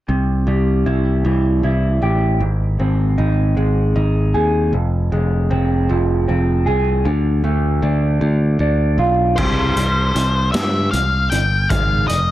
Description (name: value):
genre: quiet-loud alternative rock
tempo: 52 BPM (dotted quarters)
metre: 6/8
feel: straight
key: unclear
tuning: A4 = 439 Hz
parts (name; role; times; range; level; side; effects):
- electric guitar through a small old amp; arpeggios; 0.1-12.3 s; F2 to Ab4; -20 LUFS; right 1 dB; wide subtle chorus
- modern bright picked electric bass; bass; 0.1-12.3 s; F1 to G2; -17 LUFS; equal; none
- octave-fuzz lead guitar; melody; 9.4-12.3 s; C5 to G5; -19 LUFS; left 3 dB; distortion
- raw garage drum kit; drums; 9.4-12.3 s; crash cymbal, hi-hat, kick drum, snare drum; -21 LUFS; equal; none
room: little or no reverb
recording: none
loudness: -15 LUFS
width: side -14 dB against mid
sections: 0.1-9.4 A section; 9.4-12.3 B section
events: none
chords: 0.1 C; 2.4 Ab; 4.7 Fm; 7.1 Dm; 9.4 C; 11.7 Ab5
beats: | 0.10 1.25 | 2.42 3.58 | 4.74 5.89 | 7.05 8.22 | 9.38 10.54 | 11.70